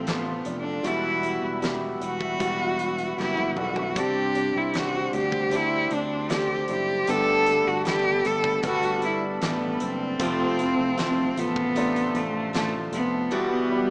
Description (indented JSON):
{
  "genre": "pop ballad",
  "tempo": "77 BPM",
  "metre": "4/4",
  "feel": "straight",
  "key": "unclear",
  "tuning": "A4 = 440 Hz",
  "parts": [
    { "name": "clear cello", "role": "melody", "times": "0.0-13.9 s", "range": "A3 to A4", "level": "-28 LUFS", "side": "equal", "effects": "none" },
    { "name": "warm grand piano", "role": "accompaniment", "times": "0.0-13.9 s", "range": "G2 to F#5", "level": "-34 LUFS", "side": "equal", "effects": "none" },
    { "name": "chorused pulse-width pad", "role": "sustained chords", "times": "0.0-13.9 s", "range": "G3 to C6", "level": "-37 LUFS", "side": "equal", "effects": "none" },
    { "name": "picked steel-string acoustic guitar", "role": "arpeggios", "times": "0.0-13.9 s", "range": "E2 to A4", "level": "-34 LUFS", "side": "equal", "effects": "none" },
    { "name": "sustaining fretless electric bass", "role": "bass", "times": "0.0-13.3 s", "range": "E1 to D2", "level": "-37 LUFS", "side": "equal", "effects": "none" },
    { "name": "huge arena drum kit", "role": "drums", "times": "0.1-13.1 s", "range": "hi-hat, kick drum, snare drum, toms", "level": "-36 LUFS", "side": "equal", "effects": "none" },
    { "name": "swell", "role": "sound effects", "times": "13.6-13.9 s", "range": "none", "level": "-34 LUFS", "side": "equal", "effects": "none" }
  ],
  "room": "light reverb, studio reverb",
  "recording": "rough home demo mix, small speaker sound",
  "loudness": "-25 LUFS",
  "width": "mono",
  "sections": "0.0-13.9 A section",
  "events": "drum fill 3.2-4.0; swell 13.6",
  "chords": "0.0 F; 0.8 Emadd9; 4.0 Csus2; 7.1 Gadd9; 10.2 F; 13.3 Emadd9",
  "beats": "0.07 | 0.85 1.63 2.41 3.19 | 3.97 4.75 5.53 6.30 | 7.08 7.86 8.64 9.42 | 10.20 10.98 11.76 12.54 | 13.32"
}